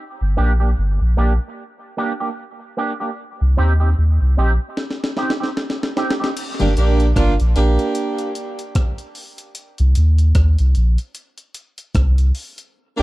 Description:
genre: dub reggae.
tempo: 75 BPM.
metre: 4/4.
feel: swing 58% on 16ths.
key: G minor.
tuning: A4 = 440 Hz.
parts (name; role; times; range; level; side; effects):
soft dub sub bass; bass; 0.2-13.0 s; G1 to Eb2; -14 LUFS; equal; none.
electric guitar with an envelope filter; accompaniment; 0.4-6.3 s; Bb3 to G4; -25 LUFS; right 2 dB; analog chorus, dub echo.
breakbeat sampler-style drum kit; drums; 4.8-12.7 s; crash cymbal, hi-hat, kick drum, rim click, snare drum; -22 LUFS; equal; none.
warm horn section; second line; 6.6-13.0 s; Bb3 to G4; -21 LUFS; right 3 dB; dub echo.
mellow tonewheel organ; accompaniment; 6.6-6.7 s; G2 to D3; -26 LUFS; left 3 dB; slow rotary speaker, dub echo.
room: little or no reverb.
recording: dry, close 1970s-style studio recording.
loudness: -16 LUFS.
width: side -18 dB against mid.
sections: 0.0-6.4 A section; 6.4-13.0 B section.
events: break 0.0-6.4; drum fill 4.8-6.4; part muted 12.7.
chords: 0.0 Gm; 3.2 Cm; 6.4 Gm; 9.6 Cm.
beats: 0.77 1.57 2.37 | 3.17 3.97 4.76 5.56 | 6.36 7.16 7.96 8.76 | 9.55 10.35 11.15 11.95 | 12.75.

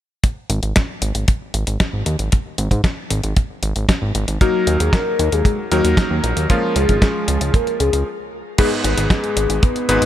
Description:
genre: italo disco.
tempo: 115 BPM.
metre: 4/4.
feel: straight.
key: G# dorian.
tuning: A4 = 440 Hz.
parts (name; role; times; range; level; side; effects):
detuned 8-bit digital drum machine; drums; 0.2-10.1 s; crash cymbal, hi-hat, snare drum; -23 LUFS; equal; none.
kick drum; drums; 0.2-9.7 s; none; -15 LUFS; equal; none.
fat analog bass; bass; 0.5-10.1 s; G#1 to G#2; -20 LUFS; equal; none.
soft octave-layered synth lead; melody; 4.4-10.1 s; F#4 to B4; -20 LUFS; left 2 dB; chorus, phaser, shimmer reverb, digital delay.
bright electric grand piano; stabs; 4.4-10.1 s; G#2 to B4; -22 LUFS; equal; shimmer reverb.
room: small room ambience.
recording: none.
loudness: -16 LUFS.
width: side -12 dB against mid.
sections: 0.2-8.6 A section; 8.6-10.1 B section.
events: stop 8.1-8.6.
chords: 0.2 G#5; 4.4 D#m; 6.5 C#; 8.6 G#m.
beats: | 0.24 0.76 1.28 1.80 | 2.32 2.85 3.37 3.89 | 4.41 4.93 5.45 5.98 | 6.50 7.02 7.54 8.06 | 8.58 9.11 9.63.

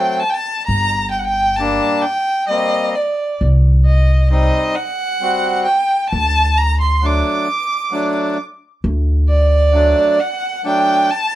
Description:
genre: klezmer.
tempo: 66 BPM.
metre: 3/4.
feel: straight.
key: D phrygian dominant.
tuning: A4 = 440 Hz.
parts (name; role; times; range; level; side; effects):
clear violin; melody; 0.0-11.3 s; D5 to D6; -17 LUFS; right 1 dB; plate reverb.
accordion; accompaniment; 0.0-11.1 s; F#3 to F#4; -19 LUFS; equal; none.
upright bass; bass; 0.7-9.9 s; G1 to D2; -14 LUFS; equal; none.
room: light reverb.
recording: dark, warm production.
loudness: -14 LUFS.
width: side -14 dB against mid.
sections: 0.0-8.8 A section; 8.8-11.3 A section.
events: break 7.9-8.8.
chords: 0.0 D (rootless); 0.7 Gm; 3.4 Cm; 6.1 D.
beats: | 0.68 1.59 2.50 | 3.40 4.30 5.21 | 6.12 7.02 7.92 | 8.83 9.73 10.64.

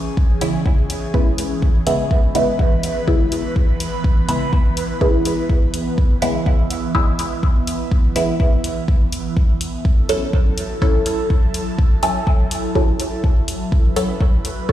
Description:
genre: dub techno.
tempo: 124 BPM.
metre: 4/4.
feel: straight.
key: C# minor.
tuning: A4 = 440 Hz.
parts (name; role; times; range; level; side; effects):
airy breathy pad; sustained chords; 0.0-14.7 s; E3 to B4; -25 LUFS; right 2 dB; chorus, phaser, sidechain pumping.
electronic kick drum; drums; 0.2-14.7 s; none; -16 LUFS; equal; none.
filtered dub chord stab; stabs; 0.4-14.7 s; C#3 to A4; -21 LUFS; equal; phaser, sidechain pumping, dub echo.
electronic hi-hat; drums; 0.4-14.5 s; none; -30 LUFS; left 2 dB; overdrive.
room: light reverb, digital ambience.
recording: played on a big sound system in a bare room, stone room reverb.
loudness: -16 LUFS.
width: side -12 dB against mid.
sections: 0.0-14.7 A section.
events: none.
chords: 0.0 C#m7; 9.9 F#m7.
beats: | 0.17 0.66 1.14 1.62 | 2.11 2.59 3.08 3.56 | 4.04 4.53 5.01 5.50 | 5.98 6.46 6.95 7.43 | 7.92 8.40 8.88 9.37 | 9.85 10.33 10.82 11.30 | 11.79 12.27 12.75 13.24 | 13.72 14.21 14.69.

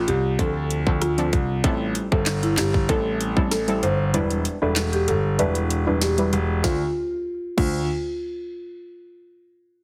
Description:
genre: dancehall.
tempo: 96 BPM.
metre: 4/4.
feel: straight.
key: D dorian.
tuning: A4 = 440 Hz.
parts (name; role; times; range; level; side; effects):
marimba with medium mallets; melody; 0.0-7.9 s; E4 to C5; -29 LUFS; equal; low-pass filter, digital delay.
clear concert grand piano; bass; 0.0-7.9 s; E1 to D2; -26 LUFS; equal; none.
island pop drum kit; drums; 0.1-7.7 s; crash cymbal, handclaps, hi-hat, kick drum, rim click, snare drum; -27 LUFS; equal; overdrive.
synth brass stab; accompaniment; 0.4-7.8 s; F3 to C5; -29 LUFS; equal; chorus, low-pass filter.
room: light reverb.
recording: heavily compressed radio sound, multiband compression.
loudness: -23 LUFS.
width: mono.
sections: 0.0-6.6 A section; 6.6-9.1 B section.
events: filter sweep 0.0-6.6; kick muted 4.1-6.6.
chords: 0.0 Dm7; 1.6 Am7; 4.1 Em7; 6.6 Dm7.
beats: 0.39 1.01 | 1.64 2.27 2.89 3.52 | 4.14 4.76 5.39 6.01 | 6.64 7.26.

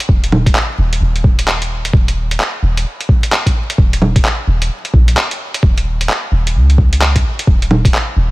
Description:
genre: future garage.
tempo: 130 BPM.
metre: 4/4.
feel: swing 62% on 16ths.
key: unclear.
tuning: A4 = 439 Hz.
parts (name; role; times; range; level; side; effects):
lo-fi sampler-style drum kit; drums; 0.0-8.1 s; bongos, handclaps, hi-hat; -17 LUFS; equal; overdrive, studio reverb.
soft 808-style bass; bass; 0.1-8.3 s; Eb1 to Db2; -14 LUFS; equal; sidechain pumping.
electronic kick drum; drums; 0.1-7.9 s; none; -12 LUFS; equal; overdrive, studio reverb.
room: little or no reverb.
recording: vinyl crackle.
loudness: -11 LUFS.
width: side -21 dB against mid.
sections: 0.0-8.3 A section.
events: none.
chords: none.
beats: | 0.09 0.55 1.01 1.48 | 1.94 2.40 2.86 3.32 | 3.78 4.25 4.71 5.17 | 5.63 6.09 6.55 7.01 | 7.48 7.94.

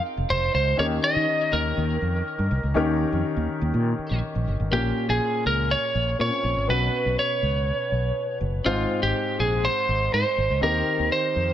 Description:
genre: 1980s-style pop.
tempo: 122 BPM.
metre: 4/4.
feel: straight.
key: unclear.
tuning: A4 = 441 Hz.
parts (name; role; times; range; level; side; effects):
clear grand piano; accompaniment; 0.0-11.5 s; Ab2 to C5; -28 LUFS; left 3 dB; none.
fretless electric bass; bass; 0.2-11.5 s; F1 to Eb3; -25 LUFS; equal; wide subtle chorus.
lightly driven lead guitar; melody; 0.3-11.5 s; F4 to Eb5; -24 LUFS; right 1 dB; ping-pong delay.
room: light reverb, studio reverb.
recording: none.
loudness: -21 LUFS.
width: side -11 dB against mid.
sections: 0.0-4.7 A section; 4.7-11.5 B section.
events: none.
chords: 0.0 Fm7; 0.8 Eb7; 4.7 Bbm; 6.7 Bsus2; 8.7 Ab; 10.6 Eb6.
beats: 0.29 | 0.79 1.28 1.77 2.26 | 2.75 3.24 3.74 4.23 | 4.72 5.21 5.70 6.20 | 6.69 7.18 7.67 8.16 | 8.65 9.15 9.64 10.13 | 10.62 11.11.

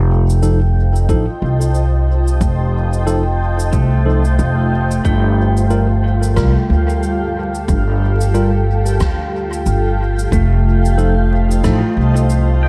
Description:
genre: ambient dub.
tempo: 91 BPM.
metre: 4/4.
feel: swing 58% on 16ths.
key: unclear.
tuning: A4 = 439 Hz.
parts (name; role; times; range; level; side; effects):
granular cloud pad; sustained chords; 0.0-12.7 s; G3 to A5; -24 LUFS; equal; built-in reverb.
upright bass; bass; 0.0-12.7 s; F1 to D2; -17 LUFS; equal; none.
cabasa and rim click; drums; 0.3-12.5 s; none; -34 LUFS; equal; dub echo.
tine electric piano; stabs; 0.4-11.8 s; F3 to Bb4; -25 LUFS; equal; dub echo.
electronic kick drum; drums; 1.1-11.8 s; none; -21 LUFS; equal; none.
pedal steel guitar; arpeggios; 3.7-12.7 s; A3 to G5; -26 LUFS; equal; tape echo.
bubbling stepped-filter texture; texture; 5.9-12.7 s; F5; -34 LUFS; equal; chorus, built-in reverb.
room: little or no reverb.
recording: dark, warm production, vinyl crackle.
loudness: -15 LUFS.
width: mono.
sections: 0.0-12.7 A section.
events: none.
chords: 0.0 F7; 5.0 G7(no3); 10.3 F7.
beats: 0.43 1.09 1.75 | 2.41 3.07 3.73 4.39 | 5.05 5.71 6.37 7.03 | 7.68 8.34 9.00 9.66 | 10.32 10.98 11.64 12.30.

